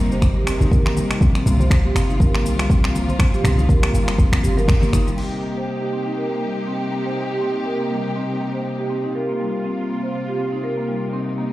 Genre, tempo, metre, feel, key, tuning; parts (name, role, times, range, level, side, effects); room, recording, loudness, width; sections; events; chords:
afro house; 121 BPM; 4/4; swing 56% on 16ths; C minor; A4 = 440 Hz
rich studio string section; sustained chords; 0.0-11.5 s; C3 to G4; -27 LUFS; equal; sidechain pumping
marimba with medium hard mallets; arpeggios; 0.0-11.5 s; G3 to C5; -23 LUFS; equal; sidechain pumping, low-pass filter, digital delay
warm 808-style bass; bass; 0.0-5.1 s; G1 to C2; -20 LUFS; equal; sidechain pumping
deep house drum kit; drums; 0.1-5.3 s; crash cymbal, finger snaps, shaker; -27 LUFS; equal; overdrive
electronic kick drum; drums; 0.2-4.8 s; -17 LUFS; equal
congas; percussion; 0.2-5.0 s; -25 LUFS; left 1 dB
light reverb, small room ambience; played on a big sound system in a bare room, large studio reverb; -17 LUFS; side -16 dB against mid
0.0-5.2 A section; 5.2-11.5 B section
band accent 4.7; filter sweep on marimba 5.2-11.5
0.0 Cm7; 1.2 F5; 5.2 Cm7; 9.1 F5/C